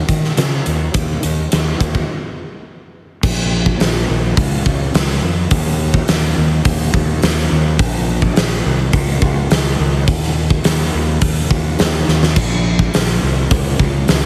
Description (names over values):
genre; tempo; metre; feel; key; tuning
hard rock; 105 BPM; 4/4; straight; unclear; A4 = 440 Hz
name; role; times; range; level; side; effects
fuzz fingered electric bass; bass; 0.0-14.3 s; Bb1 to Eb3; -19 LUFS; equal; overdrive
big rock drum kit; drums; 0.1-14.2 s; crash cymbal, hi-hat, kick drum, snare drum; -18 LUFS; equal; none
room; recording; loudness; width
little or no reverb; heavily compressed radio sound; -16 LUFS; mono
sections
0.0-3.2 A section; 3.2-14.3 B section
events
break 2.1-3.2; drum fill 12.1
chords
none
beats
0.38 | 0.95 1.52 2.10 2.67 | 3.24 3.81 4.38 4.95 | 5.52 6.09 6.66 7.22 | 7.79 8.37 8.94 9.51 | 10.08 10.65 11.22 11.79 | 12.37 12.94 13.51 14.09